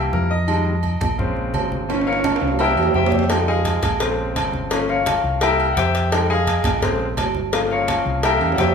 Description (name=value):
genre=latin, salsa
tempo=170 BPM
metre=4/4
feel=straight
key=F minor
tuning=A4 = 440 Hz
part: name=bright grand piano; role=accompaniment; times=0.0-8.7 s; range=Db3 to Bb5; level=-21 LUFS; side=left 3 dB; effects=none
part: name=fingered electric bass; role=bass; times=0.0-8.7 s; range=G1 to F2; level=-24 LUFS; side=equal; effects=none
part: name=congas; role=percussion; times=0.1-8.7 s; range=none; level=-28 LUFS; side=equal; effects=none
part: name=agogo bells and timbales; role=percussion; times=0.5-8.7 s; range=none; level=-24 LUFS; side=right 5 dB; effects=none
part: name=cowbell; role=percussion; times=3.3-8.7 s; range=none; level=-24 LUFS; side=left 2 dB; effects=none
room=wet large studio reverb, RT60 1.1 s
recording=band playing live in one room, lossy compression artefacts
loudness=-17 LUFS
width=side -6 dB against mid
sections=0.0-8.7 A section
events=grand piano solo 0.0-8.7; drum fill 1.9-3.3, 8.4-8.7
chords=0.5 Fm7; 1.2 Bbm7; 1.9 Gm7b5; 2.6 C7; 3.3 Fm7; 4.0 Bbm7; 4.7 Gm7b5; 5.4 C7; 6.1 Fm7; 6.8 Bbm7; 7.5 Gm7b5; 8.2 C7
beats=0.13 | 0.48 0.84 1.19 1.54 | 1.89 2.25 2.60 2.95 | 3.30 3.65 4.01 4.36 | 4.71 5.06 5.42 5.77 | 6.12 6.47 6.82 7.18 | 7.53 7.88 8.23 8.59